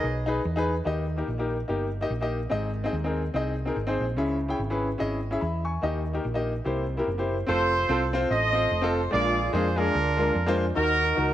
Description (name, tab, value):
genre	uptempo gospel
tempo	145 BPM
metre	4/4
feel	swing 57% on 8ths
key	unclear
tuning	A4 = 440 Hz
part	warm horn section	melody	0.0-0.4, 7.5-11.3 s	D4 to Eb5	-25 LUFS	right 2 dB	none
part	clear baby grand piano	accompaniment	0.0-11.3 s	G#2 to C#6	-27 LUFS	left 2 dB	none
part	hollow-body short-scale picked electric bass	bass	0.0-11.3 s	F1 to F2	-29 LUFS	right 1 dB	none
room	light reverb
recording	none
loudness	-24 LUFS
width	side -12 dB against mid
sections	0.9-7.5 A section; 7.5-11.3 B section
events	none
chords	0.0 G#m; 0.9 D#; 2.5 G#; 4.2 C#m; 5.8 D#; 6.7 C7; 7.5 F; 9.1 Bb7; 10.8 Ebm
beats	0.03 0.45 | 0.86 1.27 1.69 2.10 | 2.51 2.93 3.34 3.76 | 4.17 4.58 5.00 5.41 | 5.83 6.24 6.65 7.06 | 7.47 7.89 8.30 8.71 | 9.12 9.53 9.94 10.35 | 10.76 11.17